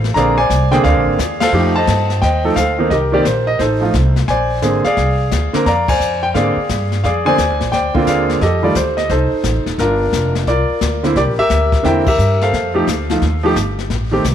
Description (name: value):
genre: jazz piano trio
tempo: 174 BPM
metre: 4/4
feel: swing 65% on 8ths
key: F mixolydian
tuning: A4 = 440 Hz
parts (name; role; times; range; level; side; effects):
- warm concert grand piano; melody; 0.0-14.2 s; D3 to Bb5; -15 LUFS; equal; slapback echo
- upright bass; bass; 0.0-14.3 s; Eb1 to Ab2; -18 LUFS; equal; none
- jazz brush drum kit; drums; 0.0-14.3 s; brushed snare drum, crash cymbal, hi-hat, kick drum, ride cymbal, snare drum; -24 LUFS; left 5 dB; none
room: light reverb, small room ambience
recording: 1960s-style stereo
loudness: -13 LUFS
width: side -9 dB against mid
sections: 0.0-14.3 A section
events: band accent 1.4, 5.8, 12.0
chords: 0.1 Bb9; 1.5 F9; 2.9 Cm7; 3.6 F7; 4.3 Bb9; 8.4 F9; 9.8 Gm7; 11.2 C9; 12.5 F9